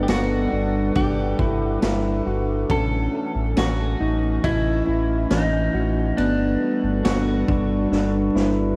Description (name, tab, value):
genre	dream pop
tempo	69 BPM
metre	4/4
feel	straight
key	unclear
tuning	A4 = 443 Hz
part	clean electric guitar	melody	0.0-8.8 s	D4 to A4	-30 LUFS	equal	lush chorus, diffuse ambient delay
part	warbly tape-like pad	sustained chords	0.0-8.8 s	E3 to F#5	-28 LUFS	equal	chorus, built-in reverb
part	mellow electric guitar	arpeggios	0.0-8.8 s	E3 to D#5	-28 LUFS	equal	subtle chorus, diffuse ambient delay
part	sub bass with octave	bass	0.0-8.7 s	G1 to A1	-27 LUFS	equal	none
part	raw garage drum kit	drums	0.1-8.6 s	kick drum, ride cymbal, snare drum, tambourine	-29 LUFS	equal	none
room	wet cathedral reverb, RT60 7.1 s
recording	dreamy mix soaked in reverb, vinyl crackle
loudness	-22 LUFS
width	mono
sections	0.0-8.8 A section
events	drum fill 7.9-8.8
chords	0.0 Gmaj7; 2.7 A; 6.2 Gmaj7